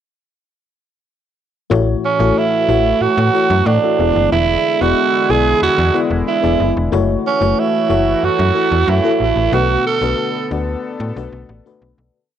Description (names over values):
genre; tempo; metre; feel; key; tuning
pop; 92 BPM; 4/4; straight; A major; A4 = 445 Hz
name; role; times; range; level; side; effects
FM electric piano; accompaniment; 1.7-12.2 s; A2 to E5; -20 LUFS; left 8 dB; chorus, cassette tape
sweeping resonant pad; sustained chords; 1.7-12.1 s; D3 to A4; -24 LUFS; equal; chorus, cassette tape
slap-like FM bass; bass; 1.7-12.1 s; E1 to A2; -18 LUFS; left 1 dB; none
growling tenor saxophone; melody; 2.1-10.5 s; C#4 to A4; -15 LUFS; right 6 dB; cassette tape
room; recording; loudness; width
moderate spring reverb, RT60 1.3 s, digital ambience; home recording on cassette; -13 LUFS; side -10 dB against mid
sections
1.7-12.1 chorus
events
fade-out 9.5-12.1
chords
1.7 A6; 4.0 E7; 6.9 F#m7; 9.5 Bm7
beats
| 1.71 2.36 3.01 3.67 | 4.32 4.97 5.62 6.28 | 6.93 7.58 8.23 8.88 | 9.54 10.19 10.84 11.49